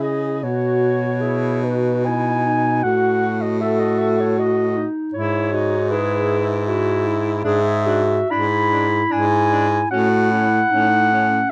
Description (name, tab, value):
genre	classical, lyrical piece for single-reed quartet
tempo	77 BPM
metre	3/4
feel	rubato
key	E major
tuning	A4 = 440 Hz
part	dark clarinet	melody	0.0-11.5 s	B4 to B5	-23 LUFS	equal	none
part	clear alto saxophone	second line	0.0-11.3 s	C#4 to G#4	-28 LUFS	equal	none
part	dark clarinet	accompaniment	0.0-11.5 s	C#4 to A4	-25 LUFS	equal	none
part	clear baritone saxophone	bass	0.0-11.4 s	G#2 to C#3	-23 LUFS	equal	none
room	moderate small room reverb, RT60 0.5 s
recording	dark, warm production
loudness	-19 LUFS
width	mono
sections	0.0-11.5 A section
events	none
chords	0.4 B; 2.8 A5; 5.1 E/G#; 9.9 A